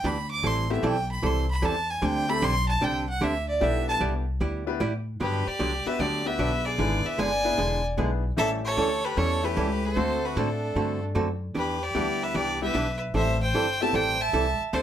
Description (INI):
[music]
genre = country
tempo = 151 BPM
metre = 4/4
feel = swing 67% on 8ths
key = G major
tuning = A4 = 439 Hz
[part]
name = clear fiddle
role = second line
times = 0.0-14.8 s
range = D4 to D6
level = -30 LUFS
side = right 1 dB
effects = none
[part]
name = archtop guitar, miked and amplified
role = accompaniment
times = 0.0-14.8 s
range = D3 to A4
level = -29 LUFS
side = right 3 dB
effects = none
[part]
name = upright bass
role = bass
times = 0.0-14.8 s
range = E1 to A2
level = -29 LUFS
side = left 1 dB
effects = none
[part]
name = bright upright piano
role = accompaniment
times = 0.7-13.9 s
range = G3 to B4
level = -32 LUFS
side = left 4 dB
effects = none
[part]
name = clear fiddle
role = melody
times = 5.2-14.8 s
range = A4 to A5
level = -28 LUFS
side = equal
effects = none
[sound]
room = light reverb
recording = none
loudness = -24 LUFS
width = side -10 dB against mid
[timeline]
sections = 0.0-5.2 A section; 5.2-14.8 B section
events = fiddle solo 0.0-5.2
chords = 0.4 Am9; 2.0 D7sus4; 3.6 G69; 5.2 Gmaj7; 6.8 E7; 8.4 A7; 10.0 D7; 11.6 Em7; 13.1 Am7